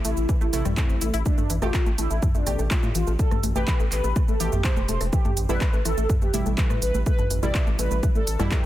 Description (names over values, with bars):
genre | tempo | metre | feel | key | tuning
melodic techno | 124 BPM | 4/4 | straight | unclear | A4 = 442 Hz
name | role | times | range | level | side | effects
mellow synth brass | melody | 0.0-8.7 s | A3 to D5 | -30 LUFS | equal | chorus, phaser, sidechain pumping, digital delay
tight sequenced synth | arpeggios | 0.0-8.7 s | E3 to A4 | -32 LUFS | left 3 dB | chorus, sidechain pumping, digital delay
synth brass stab | stabs | 0.0-8.6 s | B2 to G4 | -32 LUFS | right 2 dB | chorus, sidechain pumping, digital delay
round analog bass | bass | 0.0-8.7 s | E1 to A2 | -26 LUFS | equal | sidechain pumping
deep house drum kit | drums | 0.0-8.7 s | handclaps, hi-hat, rim click, shaker, toms | -30 LUFS | right 1 dB | none
electronic kick drum | drums | 0.3-8.6 s | none | -23 LUFS | equal | none
room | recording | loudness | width
digital ambience | dense, heavily limited modern master | -21 LUFS | side -14 dB against mid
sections
0.0-8.7 A section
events
none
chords
0.0 Am; 1.3 Em/A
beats
0.29 0.77 | 1.26 1.74 2.23 2.71 | 3.19 3.68 4.16 4.64 | 5.13 5.61 6.10 6.58 | 7.06 7.55 8.03 8.52